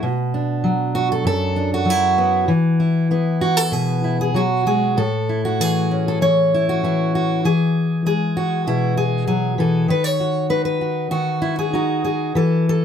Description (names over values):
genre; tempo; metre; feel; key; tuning
folk, solo fingerstyle acoustic guitar; 98 BPM; 4/4; straight; A lydian from 5.0 s; A4 = 440 Hz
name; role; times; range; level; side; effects
fingerpicked steel-string acoustic guitar; solo; 0.0-12.8 s; F#2 to C#5; -17 LUFS; equal; none
room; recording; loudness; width
light reverb; close, detailed microphones; -17 LUFS; side -8 dB against mid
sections
0.0-5.0 A section; 5.0-12.8 B section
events
none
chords
0.0 Bm; 2.5 E; 5.0 A; 7.4 E; 9.9 Emaj13/D# (rootless)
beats
| 0.03 0.64 1.25 1.86 | 2.48 3.10 3.72 4.35 | 4.98 5.60 6.21 6.83 | 7.44 8.05 8.66 9.28 | 9.89 10.50 11.12 11.73 | 12.35